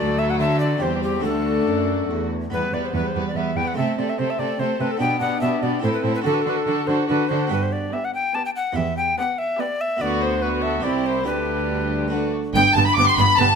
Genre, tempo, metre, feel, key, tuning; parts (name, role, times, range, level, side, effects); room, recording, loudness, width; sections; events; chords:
classical, baroque-style concerto movement with solo episodes; 144 BPM; 3/4; straight; G major; A4 = 441 Hz
alto recorder; melody; 0.0-13.6 s; G4 to D6; -24 LUFS; left 3 dB
rich chamber violin section; melody; 0.0-13.6 s; F#4 to D6; -29 LUFS; right 1 dB
rich chamber violin section; second line; 0.0-13.6 s; A3 to D6; -26 LUFS; left 2 dB
harpsichord; accompaniment; 0.0-13.6 s; C2 to B4; -28 LUFS; equal
warm chamber viola section; accompaniment; 0.0-13.5 s; F#3 to D4; -28 LUFS; right 2 dB
rich studio cello section; bass; 0.0-13.5 s; C2 to D3; -26 LUFS; right 3 dB
rich chamber double bass section; bass; 12.5-13.5 s; G1; -23 LUFS; right 5 dB
moderate recital hall reverb, RT60 1.4 s; close, detailed microphones; -19 LUFS; side -6 dB against mid
0.0-2.5 A section; 2.5-12.6 A section; 12.6-13.6 B section
0.0 D; 0.8 C/E; 1.2 D; 2.5 Em; 3.8 Am/C; 5.0 G/B; 5.8 Am; 6.3 D; 7.5 G; 8.8 Em; 10.0 Bm/D; 10.8 C; 11.3 G/D; 12.1 D; 12.6 G